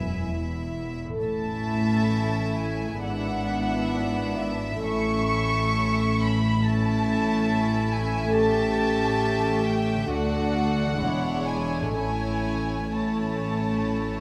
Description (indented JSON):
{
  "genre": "classical, slow romantic movement for symphony orchestra",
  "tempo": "67 BPM",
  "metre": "4/4",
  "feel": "uneven beats, rubato",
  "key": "A major",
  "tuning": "A4 = 440 Hz",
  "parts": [
    { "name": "dark studio violin section", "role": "melody", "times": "0.0-14.2 s", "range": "E5 to C#6", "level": "-33 LUFS", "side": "equal", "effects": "none" },
    { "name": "warm studio violin section", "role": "second line", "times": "0.0-14.2 s", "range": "E4 to E5", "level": "-34 LUFS", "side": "equal", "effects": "none" },
    { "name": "dark studio viola section", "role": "accompaniment", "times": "0.0-14.2 s", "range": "G#3 to E4", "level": "-33 LUFS", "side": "equal", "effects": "none" },
    { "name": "concert harp", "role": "arpeggios", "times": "0.0-14.2 s", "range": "G#2 to D5", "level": "-34 LUFS", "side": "equal", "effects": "none" },
    { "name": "dark studio cello section", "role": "bass", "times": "0.0-14.2 s", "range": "D2 to A2", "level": "-31 LUFS", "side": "equal", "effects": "none" },
    { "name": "dark studio double bass section", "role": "bass", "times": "0.0-14.2 s", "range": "E1 to D2", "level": "-33 LUFS", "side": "equal", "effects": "none" }
  ],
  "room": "moderate scoring stage reverb, RT60 1.6 s",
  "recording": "none",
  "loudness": "-25 LUFS",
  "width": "mono",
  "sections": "0.0-14.2 A section",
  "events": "none",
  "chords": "0.0 E; 1.2 A; 3.0 E7/G#; 4.9 A; 8.4 A7; 10.1 D; 11.0 E13; 12.0 A",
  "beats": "0.29 | 1.23 2.15 3.04 3.93 | 4.88 5.79 6.65 7.50 | 8.36 9.23 10.11 11.02 | 11.96 12.93 13.90"
}